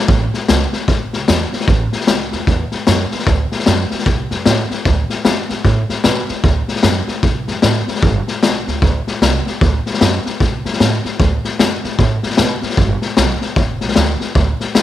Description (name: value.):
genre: rockabilly.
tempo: 151 BPM.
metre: 4/4.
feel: swing 62% on 8ths.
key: D mixolydian.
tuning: A4 = 440 Hz.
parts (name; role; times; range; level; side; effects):
upright bass; bass; 0.1-14.8 s; F1 to B2; -19 LUFS; right 3 dB; none.
raw garage drum kit; drums; 0.1-14.8 s; hi-hat, kick drum, snare drum; -14 LUFS; left 2 dB; none.
room: light reverb.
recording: 1960s-style stereo.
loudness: -13 LUFS.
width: side -12 dB against mid.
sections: 0.0-6.4 A section; 6.4-14.8 B section.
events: none.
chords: none.